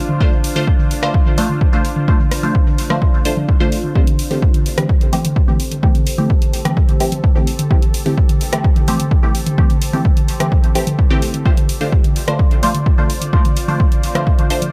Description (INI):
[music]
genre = dub techno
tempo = 128 BPM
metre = 4/4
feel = straight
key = A minor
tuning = A4 = 439 Hz
[part]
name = deep dark ambient pad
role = sustained chords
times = 0.0-14.7 s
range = D4 to D5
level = -30 LUFS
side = equal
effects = chorus, built-in reverb, vintage 12-bit sampler grit, sidechain pumping
[part]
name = electronic toms and congas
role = percussion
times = 0.1-14.7 s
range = none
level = -25 LUFS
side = equal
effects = sidechain pumping on toms, sidechain pumping on perc, dub echo
[part]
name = filtered dub chord stab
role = stabs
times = 0.2-14.6 s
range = E3 to C5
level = -24 LUFS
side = equal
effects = chorus, phaser, sidechain pumping, dub echo
[part]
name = electronic kick drum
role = drums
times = 0.2-14.4 s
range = none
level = -16 LUFS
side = equal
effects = overdrive
[part]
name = deep house drum kit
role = drums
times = 0.4-14.7 s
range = hi-hat, rim click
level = -28 LUFS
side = equal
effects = overdrive, dub echo
[sound]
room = little or no reverb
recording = echo-heavy mix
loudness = -15 LUFS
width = mono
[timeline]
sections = 0.0-14.7 A section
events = none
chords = 0.0 Dm7; 4.0 Am7; 11.5 Dm7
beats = | 0.21 0.68 1.14 1.61 | 2.08 2.55 3.02 3.49 | 3.96 4.42 4.89 5.36 | 5.83 6.30 6.77 7.24 | 7.71 8.18 8.64 9.11 | 9.58 10.05 10.52 10.99 | 11.46 11.93 12.39 12.86 | 13.33 13.80 14.27